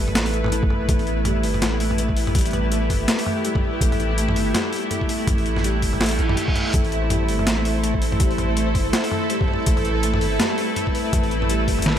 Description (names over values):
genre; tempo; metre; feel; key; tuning
half-time drum and bass; 164 BPM; 4/4; swing 58% on 16ths, half-time; A minor; A4 = 438 Hz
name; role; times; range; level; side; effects
bowed-like drone; sustained chords; 0.0-12.0 s; A3 to B4; -25 LUFS; right 1 dB; built-in reverb, sidechain pumping
felt-muted upright piano; arpeggios; 0.0-12.0 s; G3 to E4; -29 LUFS; left 3 dB; dub echo
long sustained 808-style bass; bass; 0.0-12.0 s; G1 to B1; -23 LUFS; equal; tube saturation
pulsing gated texture; texture; 0.0-12.0 s; B3 to C5; -31 LUFS; left 1 dB; chorus, built-in reverb
boom bap sampler-style drum kit; drums; 0.1-12.0 s; hi-hat, snare drum, toms; -25 LUFS; equal; overdrive
electronic kick drum; drums; 0.6-11.8 s; none; -23 LUFS; equal; overdrive
reverse cymbal; sound effects; 6.1-6.7 s; none; -29 LUFS; right 2 dB; none
room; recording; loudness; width
light reverb; none; -18 LUFS; side -10 dB against mid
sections
0.0-12.0 A section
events
reverse cymbal 6.1-6.7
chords
0.0 Amadd9